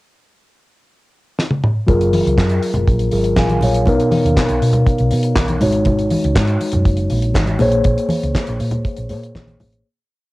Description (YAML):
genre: disco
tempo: 120 BPM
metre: 4/4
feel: straight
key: Bb phrygian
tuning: A4 = 440 Hz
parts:
  - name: damped 70s drum kit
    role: drums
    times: 1.4-9.8 s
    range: handclaps, hi-hat, kick drum, snare drum, toms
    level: -19 LUFS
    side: equal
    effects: cassette tape
  - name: mellow tine electric piano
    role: accompaniment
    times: 1.9-9.9 s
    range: B2 to Ab5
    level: -18 LUFS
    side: left 1 dB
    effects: medium stereo tremolo, cassette tape
  - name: hollow-body short-scale fingered electric bass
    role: bass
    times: 1.9-9.8 s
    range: Gb1 to B2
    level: -18 LUFS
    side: equal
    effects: none
  - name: congas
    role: percussion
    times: 1.9-9.7 s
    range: none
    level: -23 LUFS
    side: equal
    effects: none
room: light reverb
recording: home recording on cassette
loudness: -14 LUFS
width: side -19 dB against mid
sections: 0.0-1.9 pickup bar; 1.9-9.9 verse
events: drum fill 1.4-1.9; fade-out 7.9-9.9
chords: 0.0 N.C.; 1.9 Gbmaj9; 3.9 Bmaj7; 5.6 Ab7sus4; 7.6 Bbm9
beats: 0.39 0.89 1.38 | 1.88 2.38 2.88 3.37 | 3.87 4.37 4.87 5.36 | 5.86 6.36 6.86 7.36 | 7.86 8.36 8.86 9.36